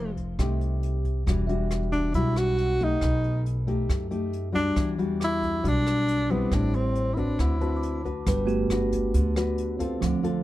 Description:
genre	bossa nova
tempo	137 BPM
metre	4/4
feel	straight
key	E minor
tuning	A4 = 440 Hz
part	breathy tenor saxophone	melody	0.0-8.0 s	B3 to F#4	-27 LUFS	equal	plate reverb
part	nylon-string guitar	accompaniment	0.0-10.4 s	A2 to B4	-30 LUFS	left 3 dB	none
part	upright bass	bass	0.0-10.4 s	E1 to F#2	-28 LUFS	equal	none
part	jazz brush drum kit	drums	0.2-10.3 s	hi-hat, kick drum, rim click	-31 LUFS	equal	none
part	bell-like tine electric piano	accompaniment	1.5-10.4 s	F3 to D6	-30 LUFS	right 4 dB	none
room	light reverb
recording	dark, warm production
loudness	-23 LUFS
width	side -15 dB against mid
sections	0.0-8.3 A section; 8.3-10.4 B section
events	tine electric piano solo 8.3-10.4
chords	0.0 F9; 1.3 Em9; 3.0 B7b13; 4.8 Em9; 6.5 Am7; 7.4 D13; 8.3 Gmaj7

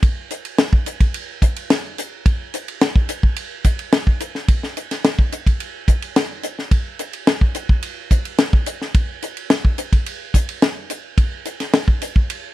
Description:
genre	jazz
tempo	108 BPM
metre	4/4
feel	straight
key	none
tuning	none
part	tight funk drum kit	drums	0.0-12.4 s	hi-hat, kick drum, ride cymbal, snare drum	-17 LUFS	equal	none
room	little or no reverb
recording	dry, close 1970s-style studio recording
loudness	-17 LUFS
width	side -16 dB against mid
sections	0.0-12.5 A section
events	none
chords	none

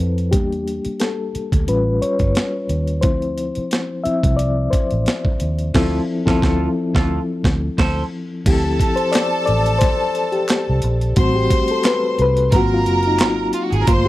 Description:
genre	lush 1970s-style soul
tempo	88 BPM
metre	4/4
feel	swing 54% on 16ths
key	unclear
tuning	A4 = 440 Hz
part	mellow reed electric piano	accompaniment	0.0-14.1 s	F3 to E5	-20 LUFS	left 2 dB	fast tremolo
part	vintage muted fingered electric bass	bass	0.0-14.1 s	F#1 to F2	-20 LUFS	right 1 dB	none
part	breakbeat sampler-style drum kit	drums	0.2-14.0 s	crash cymbal, hi-hat, kick drum, snare drum	-19 LUFS	equal	none
part	electric guitar through a small old amp	riff	5.8-8.0 s	F4 to C5	-26 LUFS	right 3 dB	vibrato effect
part	clear chamber string section	second line	8.5-14.1 s	E#4 to C6	-22 LUFS	right 2 dB	tape echo
part	group handclap	percussion	9.1-13.4 s	none	-29 LUFS	right 3 dB	none
room	little or no reverb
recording	dry, close 1970s-style studio recording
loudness	-16 LUFS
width	side -16 dB against mid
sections	0.0-8.5 A section; 8.5-14.1 B section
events	reed electric piano solo 0.0-8.5, 8.5-14.1; band accent 5.7-8.5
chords	0.3 Em7b5; 1.7 A7b13; 3.0 Dm9; 11.2 Am7; 12.5 G#13

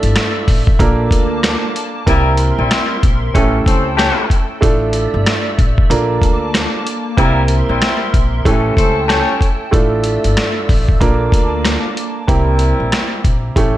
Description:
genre	hip hop, boom-bap hip-hop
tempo	94 BPM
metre	4/4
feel	swing 62% on 16ths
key	unclear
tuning	A4 = 440 Hz
part	dark upright piano	accompaniment	0.0-13.8 s	A3 to Bb4	-18 LUFS	right 3 dB	cassette tape, high-pass filter, low-pass filter
part	hollow soft pad	sustained chords	0.0-12.3 s	Bb3 to E6	-25 LUFS	left 1 dB	ensemble chorus, high-pass filter, low-pass filter
part	upright bass	bass	0.0-13.8 s	G1 to D2	-18 LUFS	equal	none
part	boom bap sampler-style drum kit	drums	0.0-13.7 s	hi-hat, kick drum, rim click, snare drum	-15 LUFS	equal	none
part	dark horn section	stabs	2.1-13.8 s	E3 to C#5	-19 LUFS	left 3 dB	high-pass filter, low-pass filter, slapback echo
room	small room reverb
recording	none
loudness	-12 LUFS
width	side -14 dB against mid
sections	0.0-12.3 A section; 12.3-13.8 B section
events	none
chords	0.0 Dmadd9; 0.8 Bbmaj7; 2.1 C7; 3.3 A7; 4.6 Dmadd9; 5.9 Bbmaj7; 7.2 C7; 8.5 A7; 9.7 Dmadd9; 11.0 Bbmaj7; 12.3 C7

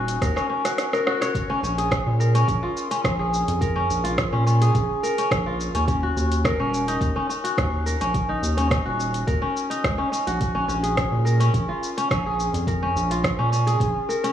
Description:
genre	organic downtempo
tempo	106 BPM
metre	4/4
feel	straight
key	unclear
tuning	A4 = 440 Hz
part	kora	arpeggios	0.0-14.3 s	Db4 to Db5	-24 LUFS	left 1 dB	digital delay
part	round analog bass	bass	0.0-13.9 s	Eb1 to Bb2	-23 LUFS	equal	tube saturation, sidechain pumping
part	afro-pop drum kit	drums	0.1-14.3 s	hi-hat, rim click, shaker	-29 LUFS	equal	overdrive
part	electronic kick drum	drums	0.2-13.9 s	none	-27 LUFS	equal	overdrive
room	light reverb, digital ambience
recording	worn, warbling old tape, cassette tape, warbly pitch drift, small room ambience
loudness	-20 LUFS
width	side -10 dB against mid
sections	0.0-1.4 A section; 1.4-14.3 A section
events	drum fill 0.2-1.4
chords	0.0 Ebm7; 1.4 Bbm7; 5.9 Ebm7; 10.4 Bbm7

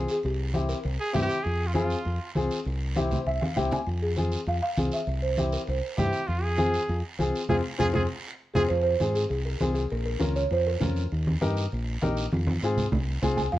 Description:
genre	latin, cumbia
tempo	199 BPM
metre	4/4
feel	straight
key	F harmonic minor, F minor from 8.7 s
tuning	A4 = 440 Hz
part	buzzing marimba with soft mallets	melody	0.0-1.3, 4.0-6.1, 8.5-10.9, 13.4-13.6 s	G4 to Ab5	-29 LUFS	right 2 dB	none
part	dark upright piano	accompaniment	0.0-13.4 s	C4 to Ab5	-29 LUFS	left 3 dB	none
part	fingered electric bass	bass	0.0-13.6 s	Bb1 to Ab2	-28 LUFS	equal	none
part	guiro	percussion	0.1-13.6 s	none	-41 LUFS	right 4 dB	none
part	congas	percussion	0.2-13.4 s	none	-30 LUFS	right 1 dB	none
part	bright trumpet	second line	1.0-2.3, 6.0-8.6 s	F4 to Ab4	-30 LUFS	right 2 dB	none
room	light reverb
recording	worn, warbling old tape, cassette tape, warbly pitch drift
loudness	-24 LUFS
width	side -14 dB against mid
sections	0.0-8.7 A section; 8.7-13.6 B section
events	upright piano fill 3.0-3.9; drum fill 3.4-3.9, 8.1-8.7, 12.3-13.5; band accent 7.5-8.7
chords	0.2 C7; 1.4 Fm; 2.7 C; 3.9 Fm; 5.1 C; 6.3 Fm; 9.9 Bbm; 11.1 Eb; 12.3 Fm

